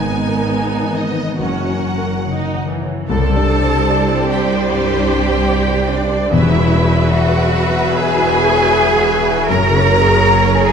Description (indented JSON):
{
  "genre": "cinematic, emotional film score for orchestra",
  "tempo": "74 BPM",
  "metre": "4/4",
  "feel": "rubato",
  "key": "unclear",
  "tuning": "A4 = 442 Hz",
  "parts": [
    { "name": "rich studio violin section", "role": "melody", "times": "0.0-10.7 s", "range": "C#5 to G#5", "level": "-26 LUFS", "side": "equal", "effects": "none" },
    { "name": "clear studio violin section", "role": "second line", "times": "0.0-10.7 s", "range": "A#4 to A#5", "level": "-21 LUFS", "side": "left 3 dB", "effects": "none" },
    { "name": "clear studio viola section", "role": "accompaniment", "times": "0.0-10.7 s", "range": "E3 to C5", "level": "-20 LUFS", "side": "right 1 dB", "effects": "none" },
    { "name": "warm concert grand piano", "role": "accompaniment", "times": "0.0-10.7 s", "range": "C2 to G#5", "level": "-20 LUFS", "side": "left 2 dB", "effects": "none" },
    { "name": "concert harp", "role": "arpeggios", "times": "0.0-10.7 s", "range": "E2 to C6", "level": "-22 LUFS", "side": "left 6 dB", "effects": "none" },
    { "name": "clear studio double bass section", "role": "bass", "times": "0.0-10.7 s", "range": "E1 to C2", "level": "-20 LUFS", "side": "right 4 dB", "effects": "none" },
    { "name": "rich studio cello section", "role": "bass", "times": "0.0-10.7 s", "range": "F#2 to A#4", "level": "-20 LUFS", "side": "right 3 dB", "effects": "none" },
    { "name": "timpani", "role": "percussion", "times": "6.3-7.5 s", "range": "E2", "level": "-20 LUFS", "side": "equal", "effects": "none" }
  ],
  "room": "wet recital hall reverb, RT60 1.4 s",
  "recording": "dark, warm production",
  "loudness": "-12 LUFS",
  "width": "side -7 dB against mid",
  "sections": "0.0-3.1 A section; 3.1-10.7 B section",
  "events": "none",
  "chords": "0.0 G#madd9; 1.4 F#; 3.1 Csus2; 6.3 Eadd9; 9.5 F#sus2"
}